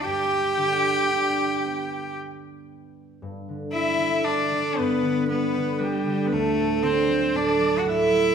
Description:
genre	celtic folk, Celtic slow air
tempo	39 BPM (dotted quarters)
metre	6/8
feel	rubato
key	G major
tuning	A4 = 440 Hz
part	bright cello	melody	0.0-8.3 s	G3 to G4	-24 LUFS	left 1 dB	none
part	rich viola	second line	0.0-8.3 s	G4 to G5	-28 LUFS	left 2 dB	none
part	concert harp	accompaniment	0.0-8.3 s	D2 to D4	-25 LUFS	right 4 dB	none
room	moderate concert hall reverb, RT60 1.7 s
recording	minimal, uncompressed stereo recording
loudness	-21 LUFS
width	side -7 dB against mid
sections	0.0-3.2 A section; 3.2-8.3 B section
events	none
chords	0.1 G; 6.3 Dadd9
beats	| 0.06 1.63 | 3.23 4.79 | 6.33 7.85

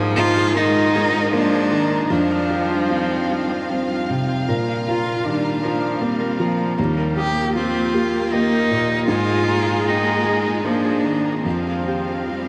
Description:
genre	neoclassical piano and strings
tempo	77 BPM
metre	3/4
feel	rubato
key	unclear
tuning	A4 = 440 Hz
part	clear viola	accompaniment	0.0-12.5 s	Eb3 to C4	-28 LUFS	equal	none
part	felt-muted upright piano	accompaniment	0.0-12.5 s	Eb2 to G5	-25 LUFS	equal	none
part	rich chamber string section	sustained chords	0.0-12.5 s	G3 to F5	-31 LUFS	equal	none
part	Celtic harp	arpeggios	0.0-12.5 s	Bb3 to Eb6	-30 LUFS	equal	diffuse ambient delay
part	warm cello	second line	0.2-12.5 s	C4 to G4	-24 LUFS	equal	none
room	wet huge ambient reverb, RT60 7.4 s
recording	dreamy mix soaked in reverb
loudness	-20 LUFS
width	mono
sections	0.0-12.5 A section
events	none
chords	0.0 Absus2; 2.1 Fsus2; 4.5 Bb; 6.8 Eb; 9.1 Absus2; 11.4 Fsus2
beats	0.55 1.32 | 2.10 2.88 3.68 | 4.47 5.25 6.01 | 6.78 7.55 8.31 | 9.07 9.85 10.63 | 11.45 12.28

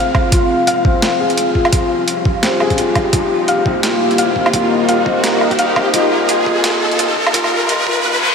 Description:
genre	half-time drum and bass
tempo	171 BPM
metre	4/4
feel	swing 57% on 16ths, half-time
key	unclear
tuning	A4 = 440 Hz
part	deep dark ambient pad	sustained chords	0.0-8.0 s	Bb3 to F5	-18 LUFS	left 1 dB	chorus, built-in reverb, sidechain pumping
part	felt-muted upright piano	arpeggios	0.0-8.3 s	C4 to F5	-18 LUFS	left 2 dB	vintage 12-bit sampler grit, low-pass filter, analog delay
part	boom bap sampler-style drum kit	drums	0.0-7.8 s	hi-hat, snare drum, woodblock	-19 LUFS	right 1 dB	overdrive, high-pass filter on hats, high-pass filter on snare, high-pass filter on toms, high-pass filter on perc, high-pass filter on room
part	riser and reverse cymbal	sound effects	0.7-8.3 s	none	-20 LUFS	equal	none
part	electronic kick drum	drums	0.1-7.9 s	none	-18 LUFS	equal	overdrive
room	wet huge ambient reverb, RT60 8.6 s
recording	dreamy mix soaked in reverb, high-pass filter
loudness	-12 LUFS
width	side -6 dB against mid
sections	0.0-8.3 A section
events	build-up 0.0-8.3; filter sweep 0.0-8.3; riser 0.7-8.3; reverse cymbal 8.0-8.3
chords	0.0 Fm; 3.1 Eb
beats	| 0.33 0.68 1.03 1.38 | 1.73 2.08 2.43 2.78 | 3.13 3.48 3.83 4.18 | 4.54 4.89 5.24 5.59 | 5.94 6.29 6.64 6.99 | 7.34 7.69 8.04

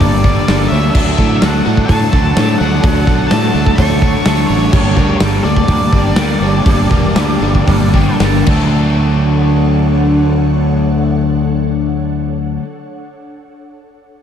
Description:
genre	rock, shoegaze and dream pop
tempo	108-127 BPM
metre	4/4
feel	straight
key	D major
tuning	A4 = 440 Hz
part	octave-fuzz lead guitar	melody	0.0-8.2 s	C#5 to C#6	-22 LUFS	left 1 dB	distortion, diffuse ambient delay
part	ethereal airy pad	sustained chords	0.0-12.6 s	D4 to E6	-24 LUFS	equal	ensemble chorus, built-in reverb
part	fingerpicked twelve-string acoustic guitar	arpeggios	0.0-9.5 s	D4 to D5	-25 LUFS	left 1 dB	wide subtle chorus, diffuse ambient delay
part	crunchy overdriven guitar	riff	0.0-12.6 s	G2 to F#4	-19 LUFS	left 7 dB	analog chorus
part	overdriven electric guitar	riff	0.0-12.6 s	G2 to D4	-20 LUFS	equal	none
part	twangy electric guitar	riff	0.0-12.7 s	G2 to A4	-21 LUFS	right 8 dB	reverse reverb
part	fingered electric bass	bass	0.0-12.6 s	E1 to A2	-16 LUFS	equal	none
part	big rock drum kit	drums	0.0-8.6 s	crash cymbal, hi-hat, kick drum, snare drum	-14 LUFS	equal	none
room	moderate lush hall reverb, RT60 1.7 s, studio ambience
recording	dreamy mix soaked in reverb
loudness	-10 LUFS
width	side -8 dB against mid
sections	0.0-8.8 A section; 8.8-13.2 B section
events	slowing down 4.7-8.8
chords	0.0 Gmadd9; 0.9 Dmaj7; 4.7 Gmadd9; 8.5 Dmaj7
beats	0.00 0.47 | 0.94 1.42 1.89 2.36 | 2.84 3.31 3.78 4.25 | 4.73 5.20 5.68 6.17 | 6.66 7.16 7.68 8.21 | 8.75 9.31 9.86 10.42 | 10.98 11.53 12.09 12.64

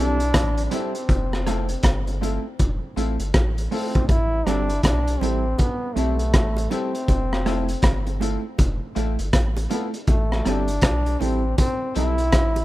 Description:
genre	roots reggae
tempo	80 BPM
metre	4/4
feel	swing 62% on 16ths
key	A minor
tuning	A4 = 437 Hz
part	clear trombone	melody	0.0-12.6 s	A3 to E4	-27 LUFS	equal	tape echo
part	mellow electric guitar	accompaniment	0.0-12.2 s	G3 to E4	-31 LUFS	right 7 dB	lush chorus, tape echo
part	bright upright piano	stabs	0.0-12.2 s	C4 to A4	-32 LUFS	left 7 dB	none
part	warm sub bass	bass	0.0-12.6 s	F1 to B1	-24 LUFS	equal	none
part	crunchy breakbeat drum kit	drums	0.2-12.6 s	hi-hat, kick drum, rim click	-22 LUFS	equal	none
part	bongos	percussion	4.1-12.6 s	none	-36 LUFS	right 3 dB	none
room	small room ambience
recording	rough home demo mix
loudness	-20 LUFS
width	side -16 dB against mid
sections	0.0-12.6 A section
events	none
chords	0.0 Am7; 1.1 Fmaj7; 4.1 Am7; 7.1 Fmaj7; 10.1 Am7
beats	0.34 | 1.09 1.84 2.59 3.34 | 4.09 4.84 5.59 6.34 | 7.08 7.83 8.58 9.33 | 10.08 10.83 11.58 12.33

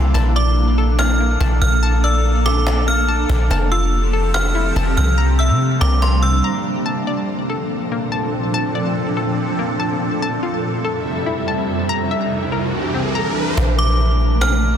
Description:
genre	hip hop, atmospheric cloud-rap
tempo	143 BPM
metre	4/4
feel	half-time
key	Bb lydian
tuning	A4 = 440 Hz
part	granular cloud pad	sustained chords	0.0-14.8 s	C2 to E5	-21 LUFS	right 1 dB	built-in reverb
part	soft 808-style bass	bass	0.0-6.4, 13.6-14.8 s	F1 to C3	-16 LUFS	equal	none
part	hollow square pluck	arpeggios	0.1-13.6 s	Bb3 to Bb5	-26 LUFS	left 7 dB	chorus, tape echo
part	cajon	drums	0.1-6.3, 13.6-14.7 s	none	-28 LUFS	left 1 dB	none
part	metallic FM bell	melody	0.4-6.4, 13.8-14.8 s	C6 to F6	-23 LUFS	right 1 dB	chorus, tape echo
part	riser	sound effects	11.0-13.6 s	none	-26 LUFS	right 2 dB	none
room	little or no reverb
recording	dense, heavily limited modern master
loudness	-16 LUFS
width	side -9 dB against mid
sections	0.0-6.9 A section; 6.9-13.6 B section; 13.6-14.8 A section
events	break 6.4-6.9; riser 11.0-13.6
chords	0.1 Bbmaj7; 3.5 Fmaj7; 5.2 C7; 6.9 Bbmaj7; 10.2 Fmaj7; 11.9 C7; 13.6 Bbmaj7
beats	| 0.15 0.57 0.99 1.41 | 1.83 2.25 2.67 3.09 | 3.51 3.92 4.34 4.76 | 5.18 5.60 6.02 6.44 | 6.86 7.28 7.70 8.12 | 8.54 8.96 9.38 9.80 | 10.22 10.64 11.06 11.48 | 11.90 12.32 12.74 13.16 | 13.58 13.99 14.41

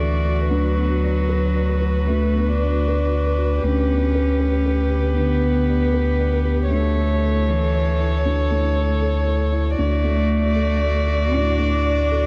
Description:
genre	neoclassical piano and strings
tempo	78 BPM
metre	4/4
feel	rubato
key	D major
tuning	A4 = 438 Hz
part	dark violin	melody	0.0-12.3 s	B4 to D5	-27 LUFS	equal	tape echo
part	rich cello	second line	0.0-12.3 s	E3 to D4	-26 LUFS	equal	tape echo
part	dark upright piano	accompaniment	0.0-12.3 s	D2 to D5	-30 LUFS	equal	tape echo
part	rich viola	accompaniment	0.0-12.3 s	F#4 to A4	-34 LUFS	equal	tape echo
part	ethereal airy pad	sustained chords	0.1-12.3 s	D3 to F#5	-38 LUFS	equal	none
part	warm sub bass	bass	0.0-12.3 s	D2	-23 LUFS	equal	none
room	light reverb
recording	echo-heavy mix, cassette tape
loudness	-20 LUFS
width	mono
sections	0.0-12.3 A section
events	none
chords	0.0 D; 0.5 Bm/D; 3.6 G/D; 6.7 A/D; 9.8 D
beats	| 0.51 1.29 2.08 2.87 | 3.64 4.41 5.18 5.95 | 6.72 7.49 8.25 9.02 | 9.79 10.56 11.35 12.12

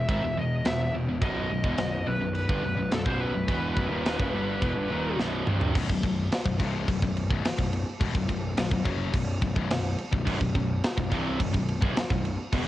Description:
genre	heavy metal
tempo	106 BPM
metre	4/4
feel	straight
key	unclear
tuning	A4 = 440 Hz
part	high-gain lead guitar	melody	0.0-5.2 s	A4 to E5	-32 LUFS	left 1 dB	distortion
part	distorted electric guitar	riff	0.0-5.8, 10.3-12.7 s	B1 to G3	-33 LUFS	right 6 dB	overdrive, cassette tape
part	heavy high-gain guitar	riff	0.0-12.7 s	B1 to G3	-31 LUFS	left 4 dB	distortion, cassette tape
part	fuzz picked electric bass	bass	0.0-12.7 s	B0 to G#1	-32 LUFS	right 1 dB	overdrive
part	tight metal drum kit	drums	0.1-12.7 s	crash cymbal, kick drum, ride cymbal, snare drum, toms	-29 LUFS	right 1 dB	cassette tape
room	small room ambience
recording	home recording on cassette, nothing above 10.7 kHz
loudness	-25 LUFS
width	side -14 dB against mid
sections	0.0-5.7 A section; 5.7-12.7 B section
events	drum fill 5.2-5.7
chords	0.0 E5; 1.2 B; 5.7 B5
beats	0.08 0.65 | 1.22 1.78 2.35 2.92 | 3.48 4.05 4.62 5.18 | 5.75 6.31 6.88 7.44 | 8.01 8.57 9.13 9.70 | 10.26 10.83 11.39 11.96 | 12.52

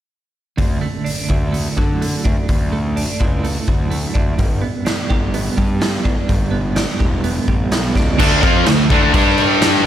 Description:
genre	quiet-loud alternative rock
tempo	126 BPM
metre	4/4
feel	straight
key	D major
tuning	A4 = 441 Hz
part	twelve-string electric guitar	arpeggios	0.6-8.2 s	G2 to G4	-23 LUFS	right 5 dB	tremolo
part	fuzz picked electric bass	bass	0.6-9.8 s	E1 to D3	-21 LUFS	equal	overdrive
part	raw garage drum kit	drums	0.6-9.7 s	crash cymbal, hi-hat, kick drum, snare drum	-18 LUFS	equal	none
part	distorted electric guitar	riff	8.2-9.9 s	D3 to G4	-20 LUFS	left 1 dB	overdrive
part	fuzz guitar	riff	8.2-9.9 s	D3 to G4	-18 LUFS	left 12 dB	distortion
part	thick fuzz guitar	riff	8.2-9.8 s	D3 to G4	-17 LUFS	right 12 dB	distortion
room	light reverb, small room reverb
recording	none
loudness	-14 LUFS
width	side -11 dB against mid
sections	0.6-8.2 A section; 8.2-9.9 B section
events	none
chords	0.6 Dadd9; 4.4 G; 8.2 D5; 9.1 G5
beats	| 0.59 1.06 1.54 2.01 | 2.49 2.96 3.44 3.91 | 4.39 4.87 5.34 5.82 | 6.29 6.77 7.24 7.72 | 8.19 8.66 9.13 9.61

